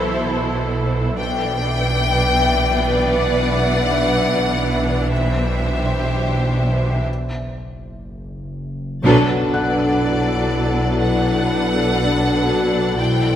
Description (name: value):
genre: cinematic, suspense film score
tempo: 61 BPM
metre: 4/4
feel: straight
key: B phrygian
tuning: A4 = 440 Hz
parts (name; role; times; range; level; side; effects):
- rich symphonic violin section; melody; 0.0-13.4 s; D5 to G5; -24 LUFS; left 3 dB; none
- clear symphonic violin section; second line; 0.0-13.4 s; G4 to D5; -24 LUFS; left 1 dB; none
- rich symphonic viola section; accompaniment; 0.0-13.4 s; E3 to E4; -25 LUFS; right 1 dB; none
- pulsing gated texture; sustained chords; 0.0-13.4 s; A4 to F#5; -26 LUFS; left 1 dB; chorus, built-in reverb
- rich studio double bass section; bass; 0.0-13.4 s; B1; -24 LUFS; right 2 dB; none
- rich symphonic cello section; bass; 0.0-13.4 s; B2; -25 LUFS; right 2 dB; none
- analog drone; drone; 0.0-13.4 s; F#1 to B1; -26 LUFS; left 1 dB; chorus
- felt-muted upright piano; texture; 0.0-13.0 s; F#5 to G6; -33 LUFS; left 2 dB; none
- dark French horn section; sustained chords; 9.0-13.4 s; D4 to F#4; -22 LUFS; left 3 dB; none
- timpani; percussion; 9.0-10.5 s; B2; -29 LUFS; equal; none
- rich symphonic violin section; texture; 9.0-13.4 s; F#6 to A6; -32 LUFS; left 3 dB; none
room: wet scoring stage reverb, RT60 1.5 s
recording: none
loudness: -16 LUFS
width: side -10 dB against mid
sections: 0.0-9.0 A section; 9.0-13.4 A section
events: break 7.1-9.0; band accent 9.0-10.0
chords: 0.0 Am/B; 1.2 G6/B; 5.1 Cadd9/B; 7.1 N.C.; 9.0 Bm7